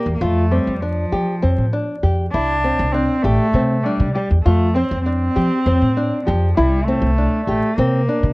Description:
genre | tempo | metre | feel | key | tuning
contemporary instrumental, chamber music in an uneven meter | 198 BPM (eighths) | 7/8 | straight | C mixolydian | A4 = 441 Hz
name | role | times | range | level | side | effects
rich cello | melody | 0.0-8.3 s | F3 to D4 | -20 LUFS | equal | none
nylon-string guitar | arpeggios | 0.0-8.3 s | C4 to G4 | -21 LUFS | left 1 dB | none
upright bass | bass | 0.1-8.3 s | A1 to F3 | -18 LUFS | equal | none
room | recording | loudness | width
little or no reverb | worn, warbling old tape, cassette tape, vinyl crackle, warbly pitch drift | -15 LUFS | side -23 dB against mid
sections
0.0-8.3 A section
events
none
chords
0.2 Fsus2; 2.3 Cadd9; 4.5 Fsus2; 6.6 Cadd9

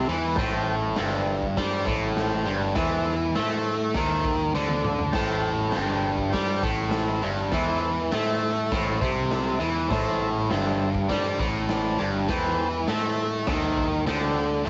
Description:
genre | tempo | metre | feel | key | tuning
garage rock duo or trio | 101 BPM | 4/4 | straight | A minor | A4 = 435 Hz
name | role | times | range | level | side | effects
combo organ | sustained chords | 0.0-14.7 s | A4 to G5 | -34 LUFS | equal | cassette tape
biting overdriven guitar | riff | 0.0-14.7 s | G2 to A3 | -28 LUFS | equal | cassette tape
growling picked electric bass | bass | 0.0-14.6 s | G1 to A2 | -33 LUFS | equal | overdrive
raw garage drum kit | drums | 0.4-14.7 s | crash cymbal, hi-hat, kick drum, snare drum, splash cymbal, toms | -33 LUFS | equal | cassette tape
room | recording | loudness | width
light reverb | home recording on cassette, nothing above 7.8 kHz | -25 LUFS | mono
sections
0.0-14.7 A section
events
drum fill 4.5-5.1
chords
0.0 Am

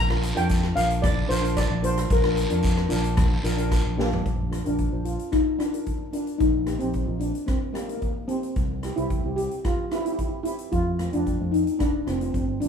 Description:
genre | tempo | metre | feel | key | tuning
calypso | 111 BPM | 4/4 | straight | Bb major | A4 = 440 Hz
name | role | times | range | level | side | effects
steel pan | melody | 0.0-12.7 s | Bb3 to Bb5 | -26 LUFS | left 1 dB | plate reverb
fingered electric bass with an envelope filter | bass | 0.0-12.7 s | F1 to F2 | -26 LUFS | left 1 dB | none
steel pan | accompaniment | 0.1-12.7 s | A3 to C5 | -32 LUFS | equal | plate reverb
street-band drum kit | drums | 0.1-12.7 s | hi-hat, kick drum, rim click, snare drum, toms | -27 LUFS | equal | none
guiro | percussion | 0.5-3.8 s | none | -35 LUFS | right 2 dB | none
room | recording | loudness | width
light reverb | rough home demo mix, small room ambience | -22 LUFS | side -7 dB against mid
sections
0.0-4.3 A section; 4.3-12.7 B section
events
drum fill 4.0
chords
0.0 Bb; 6.4 Eb/Bb; 8.6 C; 10.7 F

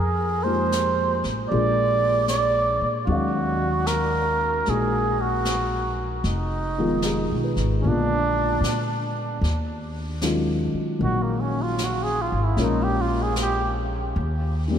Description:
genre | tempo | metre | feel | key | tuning
jazz ballad | 76 BPM | 4/4 | swing 68% on 8ths | Eb minor | A4 = 440 Hz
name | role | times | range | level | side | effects
trumpet with cup mute | melody | 0.0-13.7 s | Bb3 to D5 | -24 LUFS | right 2 dB | none
upright bass | bass | 0.0-14.8 s | F1 to Bb2 | -26 LUFS | equal | none
dark upright piano | accompaniment | 0.4-14.8 s | D3 to F5 | -27 LUFS | left 3 dB | none
jazz brush drum kit | drums | 0.7-14.8 s | brushed snare drum, hi-hat, snare drum | -35 LUFS | equal | none
room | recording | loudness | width
wet cathedral reverb, RT60 5.7 s | in a vast, echoing space | -21 LUFS | side -8 dB against mid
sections
0.0-9.4 A section; 9.4-14.8 B section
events
muted trumpet solo 9.4-14.8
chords
0.0 Fm11; 1.5 Bb7; 3.1 Ebm11; 6.2 Fm7b5; 7.8 Bb7b9; 9.4 Ebm11; 12.6 Bbm7; 14.2 Eb

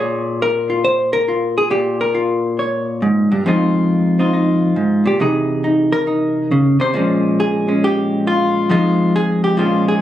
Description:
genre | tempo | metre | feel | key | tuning
solo jazz | 137 BPM | 4/4 | swing 67% on 8ths | F minor | A4 = 440 Hz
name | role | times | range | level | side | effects
vintage hollow-body jazz guitar | solo | 0.0-10.0 s | F2 to Db5 | -14 LUFS | equal | none
room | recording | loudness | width
moderate studio reverb, RT60 0.6 s | recorded on a phone in the room, club reverb | -14 LUFS | side -12 dB against mid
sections
0.0-10.0 A section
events
none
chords
0.0 Bbm7; 3.4 Fm7; 5.2 C7#9; 6.9 Bbm7; 8.7 Fm7

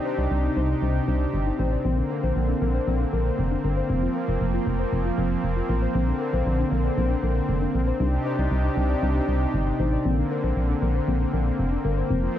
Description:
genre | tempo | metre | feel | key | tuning
pop | 117 BPM | 4/4 | straight | unclear | A4 = 437 Hz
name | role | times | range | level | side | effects
brassy analog pad | sustained chords | 0.0-12.4 s | C3 to G4 | -26 LUFS | right 1 dB | chorus
warbly dusty pluck | arpeggios | 0.1-12.4 s | C4 to D5 | -30 LUFS | left 9 dB | chorus, tape echo
solid FM bass | bass | 0.2-12.3 s | F1 to C2 | -24 LUFS | equal | none
room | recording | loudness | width
light reverb, digital ambience | dark, warm production | -22 LUFS | side -11 dB against mid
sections
0.0-12.4 A section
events
none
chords
0.0 Cmadd9; 1.8 Bbadd9; 3.9 Fsus4; 6.0 Bbadd9; 8.0 Cmadd9; 10.1 Bbadd9

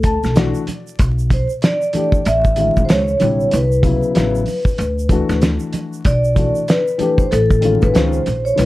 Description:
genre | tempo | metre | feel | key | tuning
hip hop, jazz-hop | 95 BPM | 4/4 | swing 59% on 16ths | unclear | A4 = 440 Hz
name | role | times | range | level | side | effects
vibraphone with soft mallets | melody | 0.0-8.7 s | A4 to E5 | -18 LUFS | equal | plate reverb
upright bass | bass | 0.0-8.7 s | A1 to D2 | -19 LUFS | equal | none
cloth-damped thuddy drum kit | drums | 0.0-8.7 s | hi-hat, kick drum, snare drum | -17 LUFS | equal | none
egg shaker and congas | percussion | 0.0-8.7 s | none | -29 LUFS | right 5 dB | none
dark concert grand piano | accompaniment | 0.1-8.7 s | C3 to A5 | -21 LUFS | left 4 dB | plate reverb
room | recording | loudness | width
light reverb | dark, warm production, vinyl crackle | -14 LUFS | side -17 dB against mid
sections
0.0-8.7 A section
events
grand piano fill 0.0-1.0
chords
0.0 Dadd9; 1.0 Bm7; 2.3 A5; 2.9 A#dim7; 3.5 Cmaj7; 4.2 Aadd9; 4.8 Dadd9; 6.1 Bm7; 7.3 Amaj7#11; 7.9 C#maj7

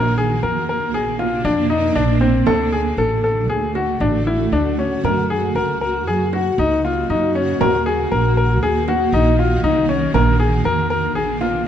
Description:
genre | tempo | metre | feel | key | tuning
contemporary instrumental, chamber music in an uneven meter | 118 BPM | 5/4 | straight | unclear | A4 = 442 Hz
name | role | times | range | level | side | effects
granular cloud pad | sustained chords | 0.0-11.7 s | C3 to F#4 | -22 LUFS | right 2 dB | built-in reverb
bright baby grand piano | arpeggios | 0.0-11.6 s | C4 to Bb4 | -19 LUFS | left 4 dB | none
upright bass | bass | 0.0-11.6 s | A1 to Gb2 | -21 LUFS | right 2 dB | none
frame drum | percussion | 0.4-11.7 s | none | -27 LUFS | right 10 dB | none
room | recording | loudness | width
moderate recital hall reverb, RT60 1.7 s | none | -16 LUFS | side -9 dB against mid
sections
0.0-11.7 A section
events
none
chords
0.0 Bbadd9; 2.5 D; 5.0 Gb; 7.6 Ebm; 10.1 Bbadd9

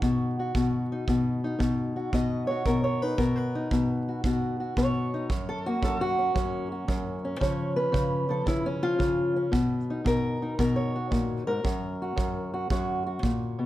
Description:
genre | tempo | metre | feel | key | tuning
acoustic country blues, solo or duo | 114 BPM | 4/4 | swing 68% on 8ths | unclear | A4 = 440 Hz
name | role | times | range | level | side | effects
fingerpicked steel-string acoustic guitar | melody | 0.0-13.7 s | F#2 to D#5 | -26 LUFS | left 1 dB | none
kick drum | drums | 0.0-13.4 s | none | -32 LUFS | right 1 dB | none
room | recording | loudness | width
light reverb | none | -25 LUFS | side -14 dB against mid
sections
0.0-13.7 A section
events
none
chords
0.0 B; 5.3 F#; 7.4 C#; 9.5 B; 11.6 F#

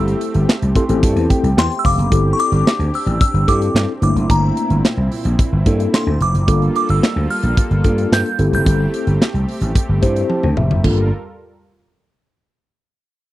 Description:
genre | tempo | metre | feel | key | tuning
early-eighties boogie funk | 110 BPM | 4/4 | straight | G dorian | A4 = 441 Hz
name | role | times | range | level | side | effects
delicate synth tine bell | melody | 0.0-10.3 s | Bb5 to G6 | -21 LUFS | equal | chorus, phaser, slapback echo
mellow tine electric piano | accompaniment | 0.0-11.1 s | A3 to C6 | -20 LUFS | left 2 dB | medium stereo tremolo
brassy analog pad | sustained chords | 0.0-11.1 s | Bb2 to Bb4 | -27 LUFS | right 1 dB | chorus
vintage slap bass | bass | 0.0-11.1 s | F1 to G2 | -17 LUFS | equal | none
modern studio drum kit | drums | 0.1-11.0 s | crash cymbal, handclaps, hi-hat, kick drum, snare drum, toms | -17 LUFS | equal | none
room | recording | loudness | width
little or no reverb | dry, close 1970s-style studio recording | -14 LUFS | side -15 dB against mid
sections
0.0-2.1 A section; 2.1-10.8 B section; 10.8-13.0 C section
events
tine electric piano fill 0.5-2.1, 10.0-10.8; drum fill 10.3-10.8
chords
0.0 Am7; 2.1 D9sus4/G; 4.0 C13; 6.5 Gm9; 8.4 Am7; 10.8 Gm9

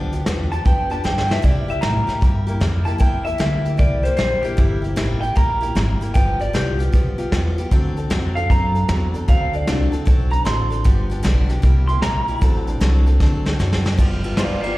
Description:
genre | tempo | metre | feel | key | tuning
rockabilly | 153 BPM | 4/4 | swing 65% on 8ths | unclear | A4 = 440 Hz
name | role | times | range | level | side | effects
picked steel-string acoustic guitar | accompaniment | 0.0-14.8 s | G2 to A4 | -27 LUFS | left 1 dB | slapback echo
upright bass | bass | 0.0-14.5 s | G1 to C3 | -20 LUFS | equal | none
vintage brush drum kit | drums | 0.1-14.7 s | hi-hat, kick drum, ride cymbal, snare drum | -20 LUFS | equal | none
electric guitar through a small old amp | melody | 0.5-14.8 s | D4 to C6 | -24 LUFS | equal | slapback echo, tape echo
room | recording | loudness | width
little or no reverb | live gig heard through the venue's PA, recital hall reverb | -16 LUFS | side -18 dB against mid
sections
0.0-14.0 A section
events
drum fill 1.0-1.4, 13.2-14.0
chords
0.0 G7; 1.4 C7; 6.1 G7; 7.7 D7; 10.8 G7; 11.6 C7; 12.4 D7; 14.0 G7

